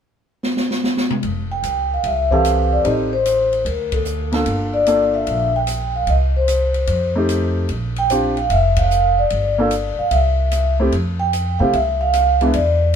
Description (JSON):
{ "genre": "jazz, small-group swing and bop", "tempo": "149 BPM", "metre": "4/4", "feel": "swing 66% on 8ths", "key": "F major", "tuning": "A4 = 444 Hz", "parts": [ { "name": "open jazz drum kit", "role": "drums", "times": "0.4-13.0 s", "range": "hi-hat, kick drum, ride cymbal, rim click, snare drum, toms", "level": "-26 LUFS", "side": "equal", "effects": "none" }, { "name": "upright bass", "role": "bass", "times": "1.2-13.0 s", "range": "F1 to C3", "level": "-20 LUFS", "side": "equal", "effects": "none" }, { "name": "vibraphone with soft mallets", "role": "melody", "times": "1.5-13.0 s", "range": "A4 to G5", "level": "-18 LUFS", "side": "equal", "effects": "none" }, { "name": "warm baby grand piano", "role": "accompaniment", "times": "2.3-12.5 s", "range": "E3 to A4", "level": "-20 LUFS", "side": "equal", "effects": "none" } ], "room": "light reverb", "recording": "band playing live in one room", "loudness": "-16 LUFS", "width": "side -8 dB against mid", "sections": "0.0-1.2 A section; 1.2-13.0 B section", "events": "drum fill 0.4-1.2; band accent 3.9, 8.7", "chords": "0.0 N.C.; 1.2 Fmaj7; 2.9 Am7b5; 3.7 D5; 4.5 Gm7; 6.1 N.C.; 6.9 F9; 7.7 Bb6; 9.3 Gm9; 10.1 C; 10.9 Fmaj7(no3)" }